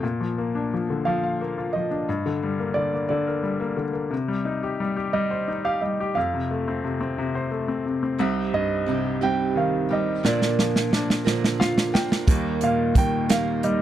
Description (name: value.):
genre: six-eight pop ballad.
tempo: 59 BPM (dotted quarters).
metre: 6/8.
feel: straight.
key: Bb major.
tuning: A4 = 440 Hz.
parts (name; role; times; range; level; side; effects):
bright upright piano; accompaniment; 0.0-13.8 s; C2 to G5; -25 LUFS; left 4 dB; none.
warm grand piano; melody; 1.1-13.8 s; D5 to G5; -26 LUFS; right 3 dB; none.
fingerpicked steel-string acoustic guitar; arpeggios; 8.2-13.8 s; Bb2 to Bb4; -26 LUFS; right 8 dB; none.
natural country drum kit; drums; 10.2-13.8 s; hi-hat, kick drum, snare drum; -21 LUFS; right 1 dB; none.
room: little or no reverb.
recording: dry, close 1970s-style studio recording.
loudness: -22 LUFS.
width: side -11 dB against mid.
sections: 0.0-8.2 A section; 8.2-13.8 B section.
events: drum fill 10.2-12.3; upright piano fill 11.3-12.3.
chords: 0.0 Bb; 2.1 Gm; 4.1 Cm; 6.2 F; 8.2 Cm; 10.2 Bb; 12.3 Eb.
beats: | 0.03 1.05 | 2.07 3.10 | 4.12 5.14 | 6.16 7.18 | 8.20 9.22 | 10.24 11.26 | 12.27 13.29.